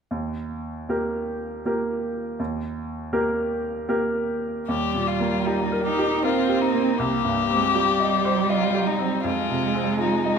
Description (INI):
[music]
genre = classical, slow romantic movement for piano trio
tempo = 80 BPM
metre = 3/4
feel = rubato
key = Eb major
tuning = A4 = 440 Hz
[part]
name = bright baby grand piano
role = accompaniment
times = 0.1-10.4 s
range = C2 to Eb5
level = -25 LUFS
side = right 1 dB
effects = none
[part]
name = rich violin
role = melody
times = 4.7-10.4 s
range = Eb4 to G4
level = -25 LUFS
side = left 9 dB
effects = none
[part]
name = warm cello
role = second line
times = 4.7-10.4 s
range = G3 to Eb4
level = -24 LUFS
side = right 5 dB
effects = none
[sound]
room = moderate scoring stage reverb, RT60 1.8 s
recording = minimal, uncompressed stereo recording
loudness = -21 LUFS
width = side -6 dB against mid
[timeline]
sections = 0.1-4.7 A section; 4.7-10.4 B section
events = none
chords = 0.1 Eb; 7.0 Cm; 9.2 Fm7